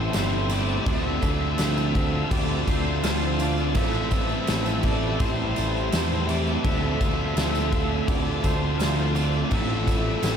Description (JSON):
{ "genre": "rock, shoegaze and dream pop", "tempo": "83 BPM", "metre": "4/4", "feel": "straight", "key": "D minor", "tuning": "A4 = 436 Hz", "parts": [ { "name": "octave-fuzz lead guitar", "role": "melody", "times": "0.0-10.4 s", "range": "C5 to E5", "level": "-34 LUFS", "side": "right 2 dB", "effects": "distortion, tape echo" }, { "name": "deep dark ambient pad", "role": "sustained chords", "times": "0.0-10.4 s", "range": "F4 to A5", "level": "-34 LUFS", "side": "right 1 dB", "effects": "chorus, built-in reverb" }, { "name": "picked twelve-string acoustic guitar", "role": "arpeggios", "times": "0.0-10.4 s", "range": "F4 to C5", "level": "-36 LUFS", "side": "right 3 dB", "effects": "none" }, { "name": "electric guitar through a small old amp", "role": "riff", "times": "0.0-10.4 s", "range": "A2 to F4", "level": "-32 LUFS", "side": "right 8 dB", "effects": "reverse reverb" }, { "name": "overdriven electric guitar", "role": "riff", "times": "0.0-10.4 s", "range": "A2 to F4", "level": "-30 LUFS", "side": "left 6 dB", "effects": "lush chorus" }, { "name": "overdriven electric guitar", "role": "riff", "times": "0.0-10.4 s", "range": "A2 to D4", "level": "-33 LUFS", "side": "left 1 dB", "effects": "none" }, { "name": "growling picked electric bass", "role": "bass", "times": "0.0-10.4 s", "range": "G1 to E2", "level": "-27 LUFS", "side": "equal", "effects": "overdrive" }, { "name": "huge arena drum kit", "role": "drums", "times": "0.1-10.4 s", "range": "crash cymbal, kick drum, snare drum", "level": "-27 LUFS", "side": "equal", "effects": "none" }, { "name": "tambourine", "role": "percussion", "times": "0.1-10.4 s", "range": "none", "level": "-44 LUFS", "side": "right 13 dB", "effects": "none" } ], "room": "moderate huge ambient reverb, RT60 7.9 s", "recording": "dreamy mix soaked in reverb", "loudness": "-21 LUFS", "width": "side -8 dB against mid", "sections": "0.0-10.4 A section", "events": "none", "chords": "0.0 Am7; 0.9 Dm7; 3.8 Am7; 6.6 Dm7; 9.5 Am7" }